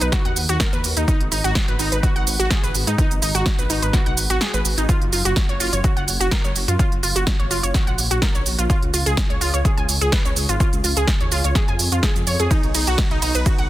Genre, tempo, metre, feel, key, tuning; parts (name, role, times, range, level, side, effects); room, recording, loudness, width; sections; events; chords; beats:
progressive house; 126 BPM; 4/4; straight; F# major; A4 = 441 Hz
wide unison pluck; arpeggios; 0.0-13.6 s; D#4 to G#5; -23 LUFS; right 1 dB; cassette tape, sidechain pumping, tape echo
dark detuned saw bass; bass; 0.0-13.7 s; F#1 to G#2; -23 LUFS; equal; sidechain pumping
deep house drum kit; drums; 0.0-13.7 s; hi-hat, ride cymbal, shaker, snare drum; -23 LUFS; right 2 dB
electronic kick drum; drums; 0.1-13.6 s; -20 LUFS; equal
little or no reverb; dense, heavily limited modern master; -17 LUFS; side -15 dB against mid
0.0-13.7 A section
kick drops out 4.4-4.9
0.0 B; 1.1 G#m7; 4.9 F#maj7; 8.7 C#; 12.5 B
0.13 0.60 | 1.08 1.56 2.03 2.51 | 2.98 3.46 3.94 4.41 | 4.89 5.37 5.84 6.32 | 6.79 7.27 7.75 8.22 | 8.70 9.18 9.65 10.13 | 10.60 11.08 11.56 12.03 | 12.51 12.98 13.46